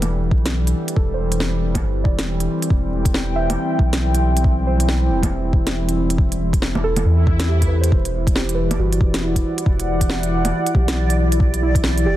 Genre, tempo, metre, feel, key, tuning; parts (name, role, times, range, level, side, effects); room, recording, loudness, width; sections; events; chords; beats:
future garage; 138 BPM; 4/4; swing 60% on 16ths; E minor; A4 = 440 Hz
muted felt-like synth keys; accompaniment; 0.0-12.2 s; E4 to E5; -28 LUFS; right 4 dB; chorus, sidechain pumping, dub echo
warbly tape-like pad; sustained chords; 0.0-12.2 s; E3 to G5; -23 LUFS; left 1 dB; chorus, built-in reverb, sidechain pumping
soft dub sub bass; bass; 0.0-12.2 s; E1 to E2; -20 LUFS; equal; sidechain pumping
organic electronic drum kit; drums; 0.0-12.0 s; bongos, hi-hat, snare drum; -24 LUFS; equal; overdrive, small room ambience
electronic kick drum; drums; 0.3-11.8 s; -18 LUFS; equal; overdrive, small room ambience
swell; sound effects; 7.1-7.9 s; -32 LUFS; left 1 dB
backwards swelling texture; texture; 8.8-12.2 s; D5; -31 LUFS; right 1 dB; built-in reverb
light reverb, digital ambience; dense, heavily limited modern master, vinyl crackle; -16 LUFS; side -14 dB against mid
0.0-7.9 A section; 7.9-12.2 A section
filter sweep on synth keys 0.0-7.9; swell 7.1-7.9
0.0 Em7; 1.0 C/E; 7.9 Em7
0.10 0.53 | 0.97 1.40 1.83 2.27 | 2.71 3.14 3.57 4.01 | 4.44 4.88 5.31 5.75 | 6.18 6.62 7.05 7.49 | 7.92 8.36 8.79 9.23 | 9.66 10.10 10.53 10.97 | 11.40 11.84